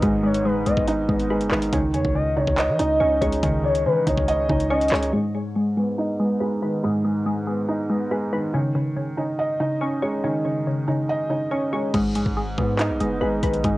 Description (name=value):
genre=hip hop, drill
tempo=141 BPM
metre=4/4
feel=half-time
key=G# minor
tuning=A4 = 440 Hz
part: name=felt-muted upright piano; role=accompaniment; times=0.0-13.8 s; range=G#2 to D#5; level=-24 LUFS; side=right 2 dB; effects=low-pass filter, cassette tape
part: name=glassy wavetable pluck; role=arpeggios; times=0.0-13.8 s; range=C#3 to C#5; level=-25 LUFS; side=left 1 dB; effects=chorus, low-pass filter, cassette tape, analog delay
part: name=hard-hitting 808-style bass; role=bass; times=0.0-5.1, 11.9-13.8 s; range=F#1 to E3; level=-28 LUFS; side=equal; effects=none
part: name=drill drum kit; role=drums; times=0.0-5.1, 11.9-13.7 s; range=crash cymbal, handclaps, hi-hat, kick drum, rim click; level=-27 LUFS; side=equal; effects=cassette tape
part: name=gliding portamento lead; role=second line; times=0.2-5.1 s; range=B4 to D#5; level=-24 LUFS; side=left 1 dB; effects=chorus, phaser, cassette tape, analog delay
room=light reverb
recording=home recording on cassette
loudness=-20 LUFS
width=side -18 dB against mid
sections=0.0-5.1 A section; 5.1-11.9 B section; 11.9-13.8 C section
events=filter sweep 5.1-11.9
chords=0.0 G#m; 1.7 C#sus2; 5.1 G#m; 8.5 C#sus2; 11.9 G#m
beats=| 0.03 0.45 0.88 1.30 | 1.73 2.15 2.58 3.00 | 3.43 3.86 4.28 4.71 | 5.13 5.56 5.98 6.41 | 6.83 7.26 7.68 8.11 | 8.54 8.96 9.39 9.81 | 10.24 10.66 11.09 11.52 | 11.94 12.37 12.79 13.22 | 13.64